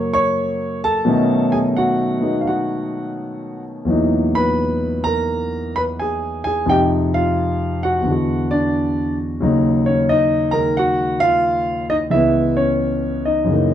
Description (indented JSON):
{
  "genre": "solo jazz",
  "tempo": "87 BPM",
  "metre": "4/4",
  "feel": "swing 66% on 8ths, rubato",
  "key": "unclear",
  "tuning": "A4 = 438 Hz",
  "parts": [
    { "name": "warm concert grand piano", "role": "solo", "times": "0.0-13.7 s", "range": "Db2 to Db6", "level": "-16 LUFS", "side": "equal", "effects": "none" }
  ],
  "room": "wet studio reverb, RT60 0.6 s",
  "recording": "heard from further back in the room",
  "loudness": "-16 LUFS",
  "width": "side -10 dB against mid",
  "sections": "0.0-13.7 A section",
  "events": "none",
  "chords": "0.0 Gb; 1.1 B13; 3.9 Emaj9#11; 6.7 Fm7; 8.1 E9; 9.4 Ebm9; 12.1 Dbm7",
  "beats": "0.38 | 1.06 1.75 2.45 3.17 | 3.88 4.58 5.28 5.97 | 6.67 7.37 8.05 8.73 | 9.41 10.09 10.76 11.44 | 12.12 12.80 13.50"
}